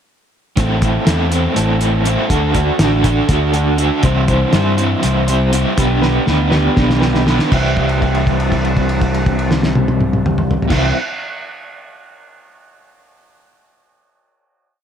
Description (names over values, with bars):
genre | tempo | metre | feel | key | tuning
psychedelic rock | 242 BPM (eighths) | 7/8 | straight | C lydian | A4 = 440 Hz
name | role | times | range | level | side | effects
crunchy overdriven guitar | riff | 0.6-10.9 s | A2 to C5 | -16 LUFS | right 1 dB | tremolo
fingered electric bass | bass | 0.6-10.9 s | A1 to G2 | -18 LUFS | equal | none
cloth-damped thuddy drum kit | drums | 0.6-10.8 s | crash cymbal, hi-hat, kick drum, snare drum, toms | -18 LUFS | equal | none
room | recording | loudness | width
studio ambience | none | -13 LUFS | side -8 dB against mid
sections
0.6-7.5 verse; 7.5-11.0 final chord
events
drum fill 6.0-7.5; held note 7.5-10.7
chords
0.6 Am; 2.3 D; 4.0 C; 5.8 G/B; 7.5 C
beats
| 0.57 0.82 1.06 1.31 1.56 1.80 2.05 | 2.30 2.55 2.79 3.04 3.29 3.54 3.79 | 4.04 4.28 4.53 4.78 5.03 5.28 5.53 | 5.78 6.03 6.28 6.53 6.77 7.02 7.27 | 7.52 7.77 8.02 8.27 8.52 8.77 9.02 | 9.26 9.51 9.76 10.01 10.26 10.50 10.75